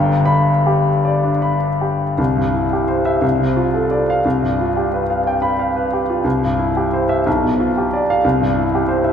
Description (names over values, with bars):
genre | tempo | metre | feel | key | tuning
classical, romantic character piece for solo piano | 59 BPM (dotted quarters) | 6/8 | uneven beats, rubato | C major | A4 = 440 Hz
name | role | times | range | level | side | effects
clear grand piano | solo | 0.0-9.1 s | G1 to B5 | -15 LUFS | left 1 dB | none
room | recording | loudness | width
wet church reverb, RT60 3.0 s | recorded in a church or concert hall | -15 LUFS | side -8 dB against mid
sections
0.0-2.2 A section; 2.2-9.1 B section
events
none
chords
0.0 G; 2.2 C; 3.2 Dm7/C; 4.2 G7/C; 6.2 C; 7.3 G7/B; 8.2 C